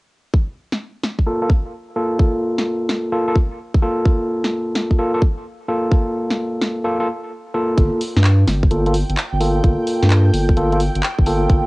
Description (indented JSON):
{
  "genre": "UK garage, two-step garage",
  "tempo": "129 BPM",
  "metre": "4/4",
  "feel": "swing 66% on 16ths",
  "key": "unclear",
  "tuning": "A4 = 438 Hz",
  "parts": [
    { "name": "electronic kick drum", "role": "drums", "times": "0.3-11.6 s", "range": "none", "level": "-15 LUFS", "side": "equal", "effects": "studio reverb, cassette tape" },
    { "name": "garage drum kit", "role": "drums", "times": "0.7-11.6 s", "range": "handclaps, hi-hat, snare drum", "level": "-23 LUFS", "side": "equal", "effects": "studio reverb, cassette tape" },
    { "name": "overdriven tine electric piano", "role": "stabs", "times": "1.3-11.7 s", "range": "Bb3 to A4", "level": "-20 LUFS", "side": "equal", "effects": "low-pass filter, cassette tape, tape echo" },
    { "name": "ethereal airy pad", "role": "sustained chords", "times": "8.8-11.7 s", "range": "G5", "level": "-28 LUFS", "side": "right 4 dB", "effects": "ensemble chorus, built-in reverb, phaser, sidechain pumping, cassette tape" },
    { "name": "saturated sub bass", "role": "bass", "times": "7.8-11.6 s", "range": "G1 to G2", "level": "-16 LUFS", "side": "equal", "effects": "none" }
  ],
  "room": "light reverb",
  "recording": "home recording on cassette, nothing above 10.6 kHz",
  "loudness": "-16 LUFS",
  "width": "side -24 dB against mid",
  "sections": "0.3-7.8 A section; 7.8-11.7 B section",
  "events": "filter sweep on tine electric piano 0.3-7.8; kick drops out 6.8-7.8",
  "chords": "0.3 Fadd11/Bb; 7.8 Gm9"
}